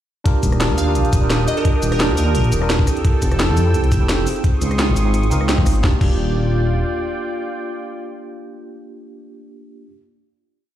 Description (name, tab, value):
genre	liquid drum and bass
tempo	172 BPM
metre	4/4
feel	swing 54% on 16ths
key	Eb major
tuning	A4 = 439 Hz
part	tine electric piano	accompaniment	0.2-9.9 s	Bb3 to C5	-24 LUFS	right 2 dB	medium stereo tremolo, ping-pong delay
part	warm analog pad	sustained chords	0.3-9.4 s	D4 to E6	-27 LUFS	right 2 dB	chorus, sidechain pumping
part	drum and bass drum kit	drums	0.3-6.1 s	cabasa, crash cymbal, hi-hat, rim click, snare drum	-24 LUFS	equal	none
part	electronic kick drum	drums	0.3-6.1 s	none	-16 LUFS	equal	none
part	dark detuned saw bass	bass	0.4-6.8 s	Eb1 to F2	-18 LUFS	equal	tube saturation
part	glassy wavetable pluck	melody	0.8-2.8 s	Bb4 to F5	-26 LUFS	right 1 dB	chorus, tape echo
room	little or no reverb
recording	played on a big sound system in a bare room, stone room reverb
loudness	-15 LUFS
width	side -12 dB against mid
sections	0.3-5.8 drop; 5.8-8.6 final chord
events	drop 0.3-5.8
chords	0.3 Ebmaj9; 2.9 Fmaj9; 4.4 Dbmaj9; 5.8 Ebmaj9